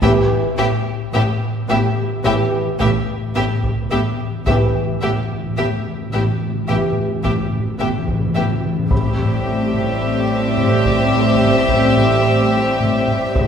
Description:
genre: cinematic, suspense film score.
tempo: 54 BPM.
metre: 4/4.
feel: straight.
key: A minor.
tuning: A4 = 440 Hz.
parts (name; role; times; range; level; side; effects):
warm symphonic violin section; melody; 0.0-13.5 s; E5; -25 LUFS; left 2 dB; none.
clear studio violin section; second line; 0.0-13.5 s; G4; -23 LUFS; left 1 dB; none.
dark symphonic viola section; accompaniment; 0.0-13.5 s; B3 to C4; -25 LUFS; left 1 dB; none.
mellow French horn section; sustained chords; 0.0-13.5 s; E3 to C5; -22 LUFS; equal; none.
folk marimba with medium mallets; riff; 0.0-13.5 s; A2 to A3; -23 LUFS; left 2 dB; none.
rich symphonic cello section; bass; 0.0-13.5 s; A2; -24 LUFS; right 2 dB; none.
warm symphonic double bass section; bass; 0.0-13.5 s; A1; -26 LUFS; right 4 dB; none.
solo taiko drums; drums; 0.0-13.5 s; none; -24 LUFS; right 1 dB; none.
timpani; percussion; 0.0-10.5 s; A2; -25 LUFS; left 1 dB; none.
felt-muted upright piano; texture; 0.0-13.5 s; G4 to B5; -30 LUFS; right 2 dB; none.
room: wet scoring stage reverb, RT60 1.9 s.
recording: heard from further back in the room.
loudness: -15 LUFS.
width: side -8 dB against mid.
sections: 0.0-8.9 A section; 8.9-13.5 B section.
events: timpani fill 0.0-8.9.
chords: 0.0 Em/A; 8.9 Am7.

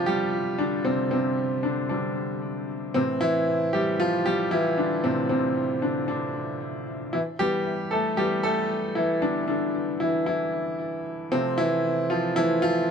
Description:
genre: pop.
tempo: 115 BPM.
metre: 4/4.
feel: straight.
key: unclear.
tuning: A4 = 440 Hz.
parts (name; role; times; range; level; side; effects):
clear baby grand piano; solo; 0.0-12.9 s; A2 to A4; -23 LUFS; equal; tape echo.
room: light reverb.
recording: none.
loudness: -23 LUFS.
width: side -6 dB against mid.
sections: 0.0-12.9 A section.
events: grand piano solo 0.0-12.9.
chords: 0.0 Csus2; 3.0 Am; 7.1 Em; 11.3 F.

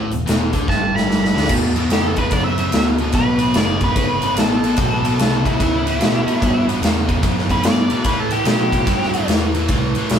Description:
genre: blues rock power trio and southern rock.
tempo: 147 BPM.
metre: 4/4.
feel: swing 64% on 8ths.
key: E minor.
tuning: A4 = 435 Hz.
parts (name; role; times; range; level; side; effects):
biting overdriven guitar; riff; 0.0-10.2 s; E2 to F#3; -20 LUFS; equal; none.
picked electric bass; bass; 0.0-10.2 s; E1 to B2; -24 LUFS; equal; none.
big rock drum kit; drums; 0.1-10.2 s; crash cymbal, hi-hat, kick drum, ride cymbal, snare drum; -19 LUFS; equal; none.
octave-fuzz lead guitar; melody; 0.7-9.3 s; E4 to B5; -22 LUFS; equal; distortion.
room: moderate studio reverb, RT60 1.0 s.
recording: band playing live in one room.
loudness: -15 LUFS.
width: side -8 dB against mid.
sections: 0.0-1.5 A section; 1.5-10.2 B section.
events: drum fill 0.7-1.5; lead electric guitar solo 1.5-10.2.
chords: 0.0 Em; 1.5 Em9; 8.1 Am9.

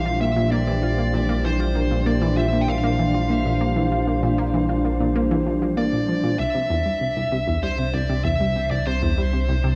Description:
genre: ambient, sequencer-driven space music.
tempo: 97 BPM.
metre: 4/4.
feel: straight.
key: unclear.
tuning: A4 = 441 Hz.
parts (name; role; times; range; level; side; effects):
dark smooth lead guitar; melody; 0.0-9.8 s; C5 to G5; -29 LUFS; equal; overdrive, tape echo.
sweeping resonant pad; sustained chords; 0.0-9.8 s; E3 to C5; -28 LUFS; equal; subtle chorus.
fat analog bass; bass; 0.0-9.8 s; Bb1 to C2; -27 LUFS; equal; tube saturation.
analog pluck; riff; 0.1-9.7 s; C2 to F4; -27 LUFS; equal; chorus, tape echo.
room: wet spring reverb, RT60 2.5 s.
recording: echo-heavy mix, cassette tape.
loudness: -22 LUFS.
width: mono.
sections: 0.0-6.4 A section; 6.4-9.8 B section.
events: none.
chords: 0.0 Bb; 6.4 C.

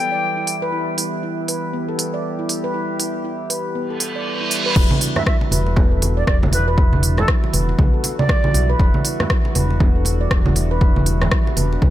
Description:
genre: afro house.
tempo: 119 BPM.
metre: 4/4.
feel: swing 60% on 16ths.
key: E minor.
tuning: A4 = 439 Hz.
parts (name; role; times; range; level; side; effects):
reedy silver concert flute; melody; 0.0-0.6, 5.2-8.7 s; A4 to G5; -26 LUFS; equal; dub echo.
warm analog pad; sustained chords; 0.0-11.9 s; E3 to G4; -28 LUFS; right 1 dB; chorus, sidechain pumping.
handpan; arpeggios; 0.1-11.9 s; B3 to D5; -25 LUFS; equal; sidechain pumping, dub echo.
deep house drum kit; drums; 0.5-11.7 s; crash cymbal, hi-hat, rim click; -23 LUFS; equal; none.
reverse cymbal; sound effects; 4.0-4.8 s; none; -23 LUFS; right 3 dB; none.
smooth gliding synth bass; bass; 4.8-11.9 s; E1 to B1; -20 LUFS; equal; sidechain pumping.
electronic kick drum; drums; 4.8-11.9 s; none; -17 LUFS; equal; none.
congas; percussion; 4.8-11.9 s; none; -23 LUFS; right 2 dB; none.
room: little or no reverb.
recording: none.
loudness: -16 LUFS.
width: side -13 dB against mid.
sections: 0.0-4.8 A section; 4.8-11.9 B section.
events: reverse cymbal 4.0-4.8; drop 4.8-11.9.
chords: 0.0 Emadd9; 4.8 Em9.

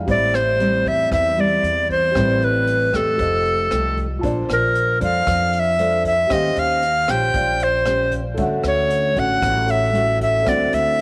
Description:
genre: bossa nova.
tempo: 116 BPM.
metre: 4/4.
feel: straight.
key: unclear.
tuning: A4 = 440 Hz.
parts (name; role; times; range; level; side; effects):
dark concert grand piano; accompaniment; 0.0-11.0 s; C4 to B5; -32 LUFS; equal; none.
nylon-string guitar; accompaniment; 0.0-11.0 s; A2 to C5; -26 LUFS; equal; none.
upright bass; bass; 0.0-11.0 s; F1 to F2; -28 LUFS; equal; none.
bright reedy tenor recorder; melody; 0.1-11.0 s; A4 to G5; -21 LUFS; equal; none.
jazz brush drum kit; drums; 0.1-11.0 s; hi-hat, kick drum, rim click; -33 LUFS; equal; none.
room: light reverb, small room ambience.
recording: none.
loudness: -19 LUFS.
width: mono.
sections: 0.0-4.2 A section; 4.2-11.0 B section.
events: none.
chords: 0.1 Am7; 3.2 F9; 4.2 Bbmaj9; 6.3 D#13; 8.4 Dmaj7; 10.5 D9.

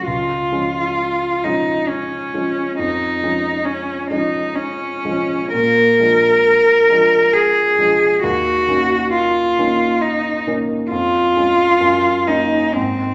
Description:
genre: classical, romantic duo for cello and grand piano.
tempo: 67 BPM.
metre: 3/4.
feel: rubato.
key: Db major.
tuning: A4 = 440 Hz.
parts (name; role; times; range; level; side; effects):
rich cello; melody; 0.0-13.1 s; C4 to Bb4; -17 LUFS; equal; none.
dark grand piano; accompaniment; 0.0-13.1 s; Db2 to Eb4; -24 LUFS; equal; none.
room: wet recital hall reverb, RT60 1.4 s.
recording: none.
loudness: -17 LUFS.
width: mono.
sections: 0.0-13.1 A section.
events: none.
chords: 0.1 Db; 2.8 Db/F; 5.5 Bb7; 8.2 Ebm7; 10.9 Db/F; 11.8 Ebm7/Gb.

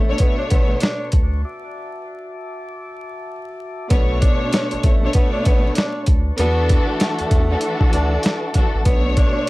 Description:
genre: hip hop, boom-bap hip-hop.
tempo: 97 BPM.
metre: 4/4.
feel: swing 62% on 16ths.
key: B minor.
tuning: A4 = 438 Hz.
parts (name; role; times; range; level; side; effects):
breathy tenor saxophone; melody; 0.0-9.5 s; A3 to D4; -26 LUFS; equal; high-pass filter, low-pass filter, tape echo.
mellow tonewheel organ; sustained chords; 0.0-9.5 s; D4 to D6; -32 LUFS; left 1 dB; slow rotary speaker, high-pass filter, low-pass filter.
round analog bass; bass; 0.0-9.3 s; A1 to E2; -21 LUFS; equal; tube saturation.
warm studio string section; accompaniment; 0.1-9.5 s; B2 to C#5; -23 LUFS; equal; cassette tape, high-pass filter, low-pass filter.
boom bap sampler-style drum kit; drums; 0.2-9.3 s; hi-hat, kick drum, snare drum; -17 LUFS; equal; none.
room: little or no reverb.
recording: dry, gritty hardware recording, vinyl crackle.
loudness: -16 LUFS.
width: side -20 dB against mid.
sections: 0.0-3.9 A section; 3.9-9.5 B section.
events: break 1.4-3.9.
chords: 0.0 Bm9; 1.4 E9sus4; 3.9 Bm9; 6.4 E9sus4; 8.9 Bm9.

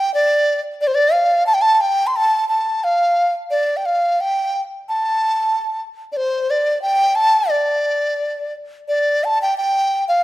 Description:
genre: chinese traditional.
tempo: 89 BPM.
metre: 2/4.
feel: rubato.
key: D yu mode.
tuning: A4 = 440 Hz.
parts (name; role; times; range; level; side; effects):
mellow hollow large dizi; solo; 0.0-10.2 s; C5 to C6; -16 LUFS; equal; none.
room: moderate recital hall reverb, RT60 1.8 s.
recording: none.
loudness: -16 LUFS.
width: side -16 dB against mid.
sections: 0.0-8.9 A section; 8.9-10.2 B section.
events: none.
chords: none.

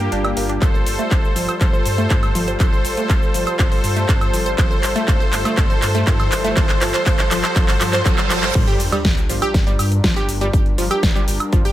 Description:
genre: progressive house.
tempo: 121 BPM.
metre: 4/4.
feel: straight.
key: G minor.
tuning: A4 = 442 Hz.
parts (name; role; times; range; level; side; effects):
soft supersaw; melody; 0.0-8.5 s; Bb3 to C5; -24 LUFS; equal; sidechain pumping, digital delay.
warm analog pad; sustained chords; 0.0-11.7 s; G3 to C5; -28 LUFS; left 2 dB; chorus, vintage 12-bit sampler grit, sidechain pumping.
dark detuned saw bass; bass; 0.0-11.7 s; G1 to G2; -24 LUFS; equal; sidechain pumping.
big-room dance drum kit; drums; 0.0-11.7 s; cabasa, crash cymbal, handclaps, hi-hat, snare drum, woodblock; -23 LUFS; equal; none.
wide unison pluck; arpeggios; 0.1-11.7 s; F3 to G5; -23 LUFS; right 1 dB; sidechain pumping, digital delay.
electronic kick drum; drums; 0.6-11.6 s; none; -17 LUFS; equal; none.
riser, reverse cymbal and sub drop; sound effects; 2.8-10.5 s; none; -29 LUFS; right 2 dB; none.
room: light reverb.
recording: none.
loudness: -15 LUFS.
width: side -13 dB against mid.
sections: 0.0-8.6 A section; 8.6-11.7 B section.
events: build-up 0.0-8.6; filter sweep on synth pluck 0.0-8.6; drum fill 0.6-8.6; riser 2.8-8.6; reverse cymbal 7.6-8.6; drop 8.6-11.7; impact 8.6-10.5.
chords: 0.0 Gm7; 0.6 F/G; 8.6 Gm7.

